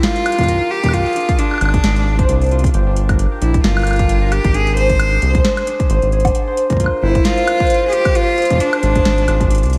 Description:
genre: IDM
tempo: 133 BPM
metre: 4/4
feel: swing 56% on 16ths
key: unclear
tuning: A4 = 440 Hz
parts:
  - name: clear cello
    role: melody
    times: 0.0-9.7 s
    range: D4 to C5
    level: -22 LUFS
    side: equal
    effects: delay
  - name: concert harp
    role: arpeggios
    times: 0.0-9.8 s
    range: D4 to C5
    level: -22 LUFS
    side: equal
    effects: vintage 12-bit sampler grit, diffuse ambient delay
  - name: booming analog drum machine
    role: drums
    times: 0.0-9.8 s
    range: hi-hat, snare drum, woodblock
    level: -25 LUFS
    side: equal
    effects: overdrive, analog delay
  - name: electronic kick drum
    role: drums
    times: 0.4-9.5 s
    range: none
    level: -20 LUFS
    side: equal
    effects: none
  - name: round analog bass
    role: bass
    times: 1.6-9.8 s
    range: G1 to C2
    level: -18 LUFS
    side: equal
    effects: tube saturation
room: moderate lush hall reverb, RT60 1.8 s, digital ambience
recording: dreamy mix soaked in reverb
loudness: -15 LUFS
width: mono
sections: 0.0-9.8 A section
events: none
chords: 0.0 Gm7; 0.9 Fm6; 2.7 Gm7; 4.5 Ab; 6.3 C7sus4; 8.2 Fm6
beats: 0.03 0.48 | 0.94 1.39 1.84 2.29 | 2.74 3.19 3.64 4.09 | 4.54 5.00 5.45 5.90 | 6.35 6.80 7.25 7.70 | 8.15 8.60 9.05 9.51

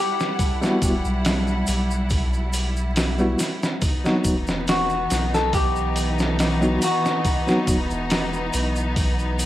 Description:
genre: trip hop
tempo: 70 BPM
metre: 4/4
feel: swing 53% on 16ths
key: E harmonic minor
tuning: A4 = 440 Hz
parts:
  - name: semi-hollow electric guitar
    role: melody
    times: 0.0-7.7 s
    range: F#4 to A4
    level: -27 LUFS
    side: left 1 dB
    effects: tape echo
  - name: clear symphonic string section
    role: sustained chords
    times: 0.0-9.5 s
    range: E3 to F#5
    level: -27 LUFS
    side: equal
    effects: none
  - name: dusty soul sampler-style drum kit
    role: drums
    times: 0.2-9.5 s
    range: hi-hat, kick drum, snare drum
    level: -24 LUFS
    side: equal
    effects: none
  - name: tube shaker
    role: percussion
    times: 0.2-9.5 s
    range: none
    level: -34 LUFS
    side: left 1 dB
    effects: none
  - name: bell-like tine electric piano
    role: accompaniment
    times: 0.6-7.8 s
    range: F#3 to F#4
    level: -24 LUFS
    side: equal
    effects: tremolo, tape echo
  - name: soft dub sub bass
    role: bass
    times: 0.8-9.5 s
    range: E1 to B1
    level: -25 LUFS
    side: equal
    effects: none
room: light reverb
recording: vinyl crackle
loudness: -19 LUFS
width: side -14 dB against mid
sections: 0.0-9.5 A section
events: none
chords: 0.0 Emadd9; 3.8 B/E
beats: | 0.40 1.25 2.11 2.97 | 3.82 4.68 5.54 6.39 | 7.25 8.11 8.97

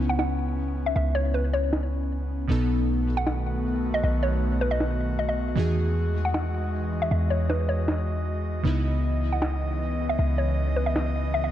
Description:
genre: future bass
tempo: 156 BPM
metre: 4/4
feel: half-time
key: C# minor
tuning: A4 = 438 Hz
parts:
  - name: glassy digital keys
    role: accompaniment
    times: 0.0-11.5 s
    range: B2 to A4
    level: -32 LUFS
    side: right 1 dB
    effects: chorus, ping-pong delay
  - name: airy breathy pad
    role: sustained chords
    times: 0.0-11.5 s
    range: C#3 to D#5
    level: -31 LUFS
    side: equal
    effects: chorus
  - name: warm 808-style bass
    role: bass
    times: 0.0-11.5 s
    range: B1 to E2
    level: -26 LUFS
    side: equal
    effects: none
  - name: hollow square pluck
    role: melody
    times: 0.1-11.5 s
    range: B4 to F#5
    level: -30 LUFS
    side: equal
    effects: chorus, ping-pong delay
  - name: electronic snare drum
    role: drums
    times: 0.2-11.0 s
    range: none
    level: -30 LUFS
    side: equal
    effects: low-pass filter on hats, low-pass filter on cymbals, low-pass filter on snare
room: light reverb, digital ambience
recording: none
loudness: -23 LUFS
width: side -12 dB against mid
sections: 0.0-11.5 A section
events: filter sweep on analog synth pad 0.0-11.5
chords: 0.0 C#m9; 2.5 B7; 5.6 Emaj9; 8.7 C#m9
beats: 0.19 0.57 | 0.96 1.34 1.73 2.11 | 2.50 2.88 3.27 3.65 | 4.03 4.42 4.80 5.19 | 5.57 5.96 6.34 6.73 | 7.11 7.50 7.88 8.27 | 8.65 9.03 9.42 9.80 | 10.19 10.57 10.96 11.34

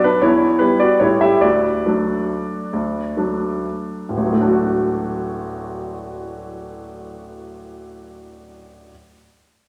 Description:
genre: classical, piano waltz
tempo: 125-163 BPM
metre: 3/4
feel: rubato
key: D major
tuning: A4 = 442 Hz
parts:
  - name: clear upright piano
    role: solo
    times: 0.0-8.9 s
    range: D1 to E5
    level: -20 LUFS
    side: equal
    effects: none
room: wet recital hall reverb, RT60 1.6 s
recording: none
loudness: -19 LUFS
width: mono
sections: 0.0-4.1 A section; 4.1-6.8 B section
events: slowing down 0.8-4.1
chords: 0.2 Em; 1.0 A7; 1.4 D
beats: | 0.23 0.61 1.02 | 1.43 1.85 2.29 | 2.73 3.17 3.64 | 4.10 4.54 4.99 | 5.43 5.87 6.32

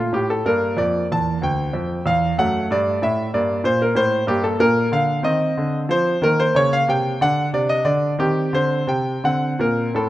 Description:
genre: classical, baroque-style suite movement for grand piano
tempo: 62 BPM (dotted quarters)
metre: 6/8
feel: uneven beats, rubato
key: unclear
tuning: A4 = 440 Hz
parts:
  - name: bright concert grand piano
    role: solo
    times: 0.0-10.1 s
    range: D2 to A5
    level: -17 LUFS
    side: equal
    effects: none
room: light reverb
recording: close, detailed microphones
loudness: -17 LUFS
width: side -14 dB against mid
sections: 0.0-10.1 A section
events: none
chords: 0.5 Gm; 2.4 Em11/F#; 3.3 Gm; 5.2 Cm; 6.2 Eb5; 7.2 Cmadd9; 8.2 Cm; 9.2 D5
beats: | 0.46 1.42 | 2.38 3.32 | 4.27 5.23 | 6.21 7.19 | 8.18 9.22

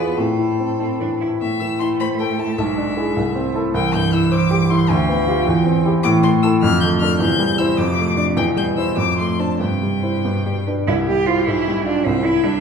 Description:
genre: quick classical-period movement for piano trio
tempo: 94-106 BPM (dotted quarters)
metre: 6/8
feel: rubato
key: A minor, C major from 6.0 s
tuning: A4 = 443 Hz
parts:
  - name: rich violin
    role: melody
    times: 0.0-12.6 s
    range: G4 to G6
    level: -25 LUFS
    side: left 6 dB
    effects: none
  - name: rich cello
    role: second line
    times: 0.0-12.6 s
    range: A2 to G4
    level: -22 LUFS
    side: right 4 dB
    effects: none
  - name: warm grand piano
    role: accompaniment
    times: 0.0-12.6 s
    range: B1 to D5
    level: -18 LUFS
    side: left 1 dB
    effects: none
room: wet recital hall reverb, RT60 1.3 s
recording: heard from further back in the room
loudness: -16 LUFS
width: side -6 dB against mid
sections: 0.0-1.4 A section; 1.4-10.9 B section; 10.9-12.6 A section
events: none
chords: 0.2 Am; 2.6 E7/B; 3.2 Am/C; 3.7 C; 4.9 G7/D; 5.5 C/E; 6.0 A5; 6.6 Dm/F; 7.2 C/E; 7.8 Dm/F; 8.4 C/E; 9.0 Dm7/F; 9.6 C/G; 10.2 G; 10.9 C; 11.5 G7/B; 12.1 C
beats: | 0.17 0.79 | 1.41 2.00 | 2.58 3.17 | 3.75 4.32 | 4.89 5.46 | 6.03 6.62 | 7.20 7.77 | 8.37 8.97 | 9.60 10.24 | 10.87 11.47 | 12.05

